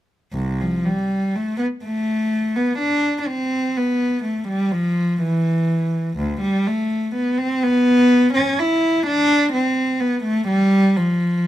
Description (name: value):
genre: classical, baroque-style suite movement for unaccompanied cello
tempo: 62 BPM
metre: 3/4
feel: rubato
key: C major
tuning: A4 = 440 Hz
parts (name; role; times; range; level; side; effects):
- warm cello; solo; 0.3-11.5 s; C2 to E4; -17 LUFS; equal; none
room: light reverb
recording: minimal, uncompressed stereo recording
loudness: -17 LUFS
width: side -13 dB against mid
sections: 0.3-11.5 A section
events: none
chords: none